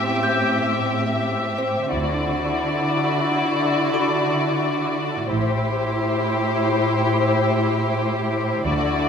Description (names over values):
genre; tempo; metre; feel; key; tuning
cinematic, suspense film score; 89 BPM; 5/4; straight; A dorian; A4 = 441 Hz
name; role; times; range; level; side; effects
muted studio violin section; melody; 0.0-9.1 s; C5 to E5; -25 LUFS; left 4 dB; none
muted studio violin section; second line; 0.0-9.1 s; F#4 to G4; -26 LUFS; left 3 dB; none
muted studio viola section; accompaniment; 0.0-9.1 s; C4 to E4; -25 LUFS; equal; none
muted studio cello section; bass; 0.0-9.1 s; A2 to D3; -25 LUFS; right 2 dB; none
impact; sound effects; 0.0-1.9 s; none; barely audible; none; none
music box; texture; 0.0-5.9 s; C4 to G6; -30 LUFS; equal; none
muted studio double bass section; bass; 1.9-9.1 s; A1 to D2; -28 LUFS; right 2 dB; none
room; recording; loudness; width
wet scoring stage reverb, RT60 1.6 s; none; -19 LUFS; side -7 dB against mid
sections
0.0-9.1 A section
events
impact 0.0-1.9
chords
0.0 Am7; 1.9 Dadd9; 5.3 Am7